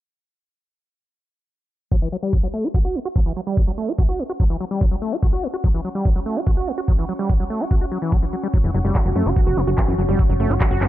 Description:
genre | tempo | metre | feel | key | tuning
psychedelic trance | 145 BPM | 4/4 | straight | F# phrygian | A4 = 441 Hz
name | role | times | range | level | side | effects
overdriven acid bass | riff | 1.9-10.9 s | E3 to G4 | -24 LUFS | moving between left 5 dB and right 6 dB | auto-pan, cassette tape, sidechain pumping, tape echo
big-room dance drum kit | drums | 1.9-10.9 s | handclaps, hi-hat | -30 LUFS | right 1 dB | overdrive
electronic kick drum | drums | 1.9-10.7 s | none | -18 LUFS | equal | none
airy breathy pad | texture | 3.6-10.9 s | C#4 to C#6 | -32 LUFS | right 2 dB | chorus, sidechain pumping
overtone-sweeping drone | sustained chords | 8.8-10.9 s | F#3 to F#4 | -27 LUFS | left 2 dB | chorus, built-in reverb, sidechain pumping
plucky analog bass | bass | 8.6-10.9 s | F#1 to F#2 | -20 LUFS | equal | tube saturation
room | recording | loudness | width
little or no reverb | dark, warm production, low-pass filter | -18 LUFS | side -14 dB against mid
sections
1.9-10.9 A section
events
fade-in on analog synth pad 1.9-10.9; filter sweep on acid bass 1.9-10.9; filter sweep 1.9-10.9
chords
1.9 F#5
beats
| 1.92 2.33 2.74 3.16 | 3.57 3.98 4.40 4.81 | 5.23 5.64 6.05 6.47 | 6.88 7.29 7.71 8.12 | 8.54 8.95 9.36 9.78 | 10.19 10.61

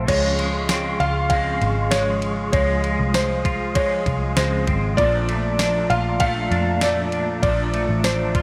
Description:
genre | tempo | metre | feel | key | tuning
dream pop | 98 BPM | 4/4 | straight | unclear | A4 = 440 Hz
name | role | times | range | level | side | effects
clean electric guitar | accompaniment | 0.0-8.4 s | Bb2 to Eb4 | -31 LUFS | equal | tremolo, ensemble chorus, dub echo
mellow tonewheel organ | sustained chords | 0.0-8.4 s | F4 to Eb6 | -32 LUFS | equal | fast rotary speaker
semi-hollow electric guitar | arpeggios | 0.0-8.4 s | F3 to F4 | -29 LUFS | equal | ensemble chorus, dub echo
vintage muted picked electric bass | bass | 0.0-8.4 s | Ab1 to F2 | -27 LUFS | equal | none
felt-muted upright piano | melody | 0.1-8.4 s | C5 to F5 | -26 LUFS | equal | dub echo
crisp 8-bit digital drum machine | drums | 0.1-8.4 s | crash cymbal, kick drum, ride cymbal, snare drum, tambourine | -28 LUFS | equal | dub echo
room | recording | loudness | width
wet spring reverb, RT60 1.8 s | echo-heavy mix | -21 LUFS | mono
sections
0.1-8.4 A section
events
none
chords
0.1 Dbmaj7; 5.0 Bbmaj7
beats
| 0.08 0.70 1.31 1.92 | 2.53 3.15 3.76 4.37 | 4.98 5.59 6.21 6.82 | 7.43 8.04

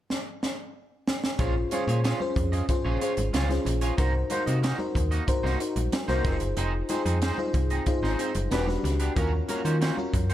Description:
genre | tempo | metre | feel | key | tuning
polished 1980s jazz-funk pop | 93 BPM | 4/4 | straight | Bb minor | A4 = 440 Hz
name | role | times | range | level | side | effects
crisp fusion drum kit | drums | 0.1-10.3 s | hi-hat, kick drum, snare drum | -30 LUFS | equal | none
FM electric piano with soft pad layer | accompaniment | 1.4-10.3 s | Db4 to C5 | -29 LUFS | left 2 dB | analog chorus
electric guitar at the edge of break-up | riff | 1.4-10.3 s | Bb3 to Eb5 | -33 LUFS | right 4 dB | lush chorus
slap-like FM bass | bass | 1.4-10.3 s | E1 to Eb3 | -27 LUFS | equal | none
congas | percussion | 1.7-10.3 s | none | -39 LUFS | right 2 dB | none
room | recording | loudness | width
light reverb, small room ambience | dark, warm production | -24 LUFS | side -12 dB against mid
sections
0.0-1.4 A section; 1.4-10.3 B section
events
drum fill 0.1-1.4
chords
0.0 N.C.; 1.4 Bbm7; 4.0 Cm7b5; 6.2 Fm7; 8.5 Em7; 9.2 Ebm7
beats
0.10 0.74 | 1.39 2.04 2.68 3.33 | 3.98 4.63 5.28 5.92 | 6.57 7.22 7.87 8.52 | 9.16 9.81

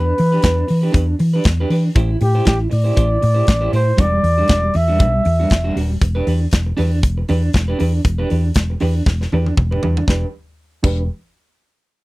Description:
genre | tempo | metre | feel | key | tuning
disco | 118 BPM | 4/4 | swing 56% on 16ths | E minor | A4 = 442 Hz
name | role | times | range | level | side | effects
breathy flugelhorn | melody | 0.0-5.8 s | G4 to E5 | -19 LUFS | equal | none
electric guitar at the edge of break-up | accompaniment | 0.0-11.0 s | G3 to C5 | -23 LUFS | right 2 dB | tremolo, low-pass filter
hollow-body short-scale fingered electric bass | bass | 0.0-11.1 s | D#1 to E3 | -17 LUFS | equal | none
modern studio drum kit | drums | 0.2-11.0 s | crash cymbal, hi-hat, kick drum, snare drum, toms | -16 LUFS | equal | none
room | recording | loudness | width
little or no reverb | dry, close 1970s-style studio recording | -14 LUFS | side -21 dB against mid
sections
0.0-6.0 A section; 6.0-10.1 B section; 10.1-12.0 C section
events
drum fill 9.1-10.1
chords
0.0 Em7; 2.0 Am7; 4.0 Em9; 6.0 Em7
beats
0.43 0.94 1.45 | 1.96 2.46 2.97 3.48 | 3.98 4.49 5.00 5.51 | 6.01 6.52 7.03 7.54 | 8.05 8.55 9.06 9.57 | 10.08 10.59

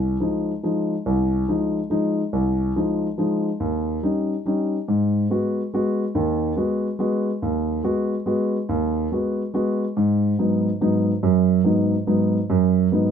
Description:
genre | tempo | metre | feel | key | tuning
jazz | 142 BPM | 3/4 | swing 67% on 8ths | F minor, G# minor from 4.9 s | A4 = 439 Hz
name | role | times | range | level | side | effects
dark concert grand piano | solo | 0.0-13.1 s | C2 to F#4 | -19 LUFS | equal | none
room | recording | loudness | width
moderate club reverb, RT60 0.9 s | minimal, uncompressed stereo recording | -20 LUFS | side -7 dB against mid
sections
0.0-4.9 A section; 4.9-13.1 B section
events
none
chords
0.0 Fm7; 3.6 Eb7; 4.9 G#m7; 10.0 B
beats
0.20 0.63 | 1.05 1.48 1.90 | 2.33 2.75 3.18 | 3.60 4.03 4.45 | 4.88 5.30 5.72 | 6.15 6.57 6.99 | 7.42 7.84 8.26 | 8.69 9.11 9.53 | 9.95 10.38 10.80 | 11.22 11.64 12.06 | 12.49 12.91

